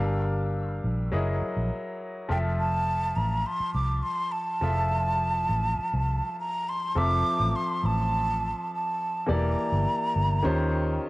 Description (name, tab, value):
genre	lush 1970s-style soul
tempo	103 BPM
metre	4/4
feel	straight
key	F major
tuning	A4 = 441 Hz
part	breathy concert flute	melody	0.0-11.1 s	G5 to D6	-28 LUFS	right 1 dB	cassette tape, tape echo
part	clear baby grand piano	accompaniment	0.0-11.1 s	Eb3 to F5	-31 LUFS	left 2 dB	cassette tape
part	vintage muted fingered electric bass	bass	0.0-11.0 s	E1 to Eb2	-27 LUFS	equal	none
room	light reverb, small room ambience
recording	home recording on cassette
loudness	-24 LUFS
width	side -20 dB against mid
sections	0.0-7.0 A section; 7.0-11.1 B section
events	none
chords	0.0 Gm7; 1.1 Gb13; 2.3 Fmaj7; 9.3 Em7b5; 10.5 Eb13